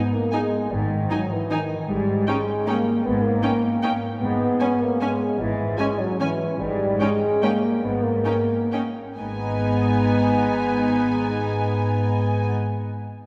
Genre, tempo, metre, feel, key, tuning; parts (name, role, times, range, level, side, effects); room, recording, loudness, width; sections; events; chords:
classical; 125-167 BPM; 3/4; rubato; G# minor; A4 = 440 Hz
dark French horn section; sustained chords; 0.0-12.5 s; D#3 to B3; -26 LUFS; equal
dark studio violin section; melody; 0.3-12.5 s; G5 to G#5; -34 LUFS; equal
warm symphonic violin section; second line; 0.3-12.5 s; C#4 to D#4; -38 LUFS; equal
rich symphonic viola section; accompaniment; 0.3-12.5 s; B3 to D#4; -30 LUFS; equal
rich symphonic cello section; bass; 0.7-12.5 s; G#2; -31 LUFS; equal
warm chamber double bass section; bass; 0.7-12.5 s; G#1; -32 LUFS; equal
wet church reverb, RT60 3.0 s; recorded in a church or concert hall; -23 LUFS; mono
0.0-9.2 A section; 9.2-11.8 B section
slowing down 6.0-9.2
0.0 G#5; 1.9 D#7/G# (rootless); 4.2 C#m/G#; 6.6 D#7/G# (rootless); 9.2 G#m